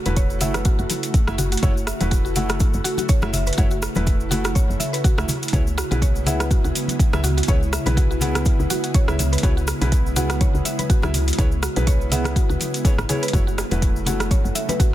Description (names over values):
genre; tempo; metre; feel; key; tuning
afro house; 123 BPM; 4/4; swing 56% on 16ths; F# minor; A4 = 440 Hz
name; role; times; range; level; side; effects
ethereal airy pad; sustained chords; 0.0-14.9 s; C#3 to F#4; -29 LUFS; equal; ensemble chorus, built-in reverb, sidechain pumping
mallet-like synth pluck; arpeggios; 0.0-14.9 s; F#4 to E5; -30 LUFS; equal; chorus, sidechain pumping, dub echo
felt-muted upright piano; stabs; 0.1-14.9 s; A3 to F#5; -29 LUFS; right 1 dB; sidechain pumping, dub echo
woody FM bass; bass; 0.1-14.5 s; E1 to C#2; -24 LUFS; equal; sidechain pumping
deep house drum kit; drums; 0.1-14.9 s; hi-hat, rim click; -28 LUFS; right 1 dB; small room ambience, soft clipping on snare
cabasa; percussion; 0.1-14.9 s; none; -33 LUFS; left 3 dB; none
congas; percussion; 0.1-14.8 s; none; -29 LUFS; left 2 dB; none
electronic kick drum; drums; 0.2-14.9 s; none; -19 LUFS; equal; small room ambience
bongos; percussion; 13.3-14.8 s; none; -36 LUFS; right 3 dB; none
room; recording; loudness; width
small room ambience; dense, heavily limited modern master; -18 LUFS; side -14 dB against mid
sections
0.0-14.9 A section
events
none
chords
0.0 F#m7; 5.5 C#m7; 13.3 F#m7